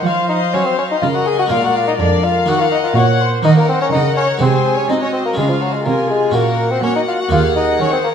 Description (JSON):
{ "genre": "classical, baroque-style concerto movement with solo episodes", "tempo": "124 BPM", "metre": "4/4", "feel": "straight", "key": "unclear", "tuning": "A4 = 439 Hz", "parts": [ { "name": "warm chamber violin section", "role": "melody", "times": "0.0-8.1 s", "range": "D5 to Ab5", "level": "-24 LUFS", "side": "left 3 dB", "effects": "none" }, { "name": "dark chamber viola section", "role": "accompaniment", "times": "0.0-8.1 s", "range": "F4 to Db5", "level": "-22 LUFS", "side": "left 1 dB", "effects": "none" }, { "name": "harpsichord", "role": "accompaniment", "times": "0.0-8.1 s", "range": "Eb2 to Gb4", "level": "-22 LUFS", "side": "right 1 dB", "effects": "none" }, { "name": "rich chamber cello section", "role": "bass", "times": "0.0-8.1 s", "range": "Eb2 to C4", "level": "-18 LUFS", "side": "right 4 dB", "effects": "none" }, { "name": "warm bassoon", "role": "melody", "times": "0.1-8.1 s", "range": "F3 to Ab4", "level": "-18 LUFS", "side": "left 2 dB", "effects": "none" }, { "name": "warm chamber violin section", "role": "second line", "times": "0.1-8.1 s", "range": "F4 to Ab5", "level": "-22 LUFS", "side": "left 6 dB", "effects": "none" } ], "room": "wet recital hall reverb, RT60 1.3 s", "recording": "dark, warm production", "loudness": "-13 LUFS", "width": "side -8 dB against mid", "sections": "0.0-8.1 A section", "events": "none", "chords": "0.0 Ebm; 1.5 Bb7; 2.5 Ebm; 4.4 Ab/C; 5.4 Db; 6.3 Gb/Bb; 7.3 Ebm" }